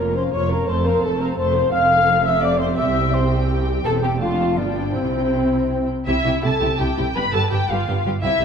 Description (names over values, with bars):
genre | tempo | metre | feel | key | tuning
quick classical-period movement for symphony orchestra | 168 BPM | 3/4 | rubato | C major | A4 = 439 Hz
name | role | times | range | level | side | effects
muted studio violin section | melody | 0.0-8.4 s | Db5 to B5 | -27 LUFS | left 2 dB | none
hollow concert flute | second line | 0.0-5.9 s | C5 to F6 | -26 LUFS | left 4 dB | none
muted studio violin section | second line | 0.0-8.4 s | B3 to F5 | -29 LUFS | left 2 dB | none
muted studio viola section | accompaniment | 0.0-8.4 s | A3 to C5 | -26 LUFS | right 2 dB | none
mellow French horn section | sustained chords | 0.0-5.9 s | C4 to F5 | -21 LUFS | left 2 dB | none
muted studio cello section | bass | 0.0-8.4 s | C2 to C3 | -26 LUFS | right 1 dB | none
muted studio double bass section | bass | 0.0-8.4 s | E1 to C2 | -24 LUFS | right 3 dB | none
room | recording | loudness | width
wet scoring stage reverb, RT60 1.9 s | dark, warm production | -17 LUFS | side -6 dB against mid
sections
0.0-6.1 A section; 6.1-8.4 B section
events
none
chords
0.0 Bbm/F; 0.7 F; 2.8 C; 3.9 C/E; 4.2 Dm/F; 4.6 G7; 4.9 C; 7.2 G7